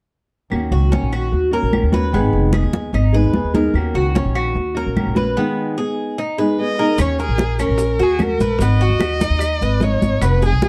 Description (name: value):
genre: latin, Cuban son and guajira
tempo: 148 BPM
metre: 4/4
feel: straight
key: Eb minor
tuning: A4 = 438 Hz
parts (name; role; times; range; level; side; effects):
- nylon-string guitar; accompaniment; 0.5-7.0 s; Eb3 to Ab4; -23 LUFS; equal; none
- upright bass; bass; 0.5-10.7 s; F1 to Eb2; -21 LUFS; equal; none
- claves; percussion; 0.5-10.4 s; none; -37 LUFS; equal; none
- congas; percussion; 0.5-10.7 s; none; -24 LUFS; equal; none
- Cuban tres; arpeggios; 0.7-10.7 s; Cb4 to Cb5; -25 LUFS; equal; none
- warm violin; melody; 6.6-10.7 s; Ab4 to Eb5; -24 LUFS; equal; none
- bongos; percussion; 7.0-10.7 s; none; -30 LUFS; equal; none
- maracas; percussion; 7.0-10.7 s; none; -41 LUFS; equal; none
room: light reverb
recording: dark, warm production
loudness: -18 LUFS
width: mono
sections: 0.5-7.0 A section; 7.0-10.7 B section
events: none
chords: 0.5 Ebm7; 2.1 Abm; 3.8 Ebm7; 5.4 Abm; 7.0 Ebm7; 8.6 Abm7